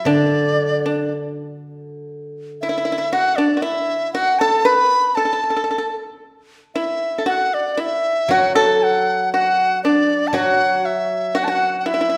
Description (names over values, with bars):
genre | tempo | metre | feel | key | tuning
chinese traditional, Chinese chamber ensemble | 59 BPM | 2/4 | rubato | unclear | A4 = 440 Hz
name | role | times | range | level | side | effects
reedy large dizi | melody | 0.0-12.2 s | D5 to B5 | -21 LUFS | equal | none
pipa | second line | 0.0-12.2 s | D4 to B4 | -23 LUFS | equal | none
steel-string zither | accompaniment | 0.0-3.1, 8.3-12.2 s | D3 to F#3 | -27 LUFS | equal | none
room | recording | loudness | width
wet recital hall reverb, RT60 1.5 s | none | -18 LUFS | mono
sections
0.0-12.2 A section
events
none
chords
none